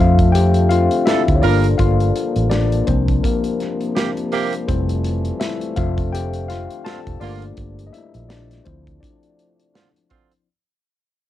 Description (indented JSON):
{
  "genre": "lush 1970s-style soul",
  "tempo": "83 BPM",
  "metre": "4/4",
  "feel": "swing 58% on 16ths",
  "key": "D minor",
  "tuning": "A4 = 441 Hz",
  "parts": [
    { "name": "tine electric piano", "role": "accompaniment", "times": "0.0-10.5 s", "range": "F3 to A5", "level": "-21 LUFS", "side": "left 7 dB", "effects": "tube saturation, cassette tape" },
    { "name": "dark French horn section", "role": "sustained chords", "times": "0.0-10.5 s", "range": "Bb2 to D4", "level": "-27 LUFS", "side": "equal", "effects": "cassette tape" },
    { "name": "vintage muted fingered electric bass", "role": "bass", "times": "0.0-9.0 s", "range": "E1 to F2", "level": "-18 LUFS", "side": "right 1 dB", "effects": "none" },
    { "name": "modern studio drum kit", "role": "drums", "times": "0.2-10.5 s", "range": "hi-hat, kick drum, snare drum", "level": "-22 LUFS", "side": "right 1 dB", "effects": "cassette tape" },
    { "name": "warm horn section", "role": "stabs", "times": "1.1-10.3 s", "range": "C3 to Bb4", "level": "-22 LUFS", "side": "right 9 dB", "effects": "cassette tape" }
  ],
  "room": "light reverb",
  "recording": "home recording on cassette",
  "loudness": "-16 LUFS",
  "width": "side -13 dB against mid",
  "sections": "0.0-10.5 A section",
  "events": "fade-out 0.0-10.5; tine electric piano solo 0.0-10.5",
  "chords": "0.0 Dm7/F; 1.4 Gm7; 2.9 C7sus4; 4.7 Fmaj9; 5.8 Dm7/F; 7.2 Gm7; 8.7 Dm7",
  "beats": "0.35 1.07 | 1.79 2.52 3.24 3.96 | 4.68 5.41 6.13 6.85 | 7.58 8.30 9.02 9.74"
}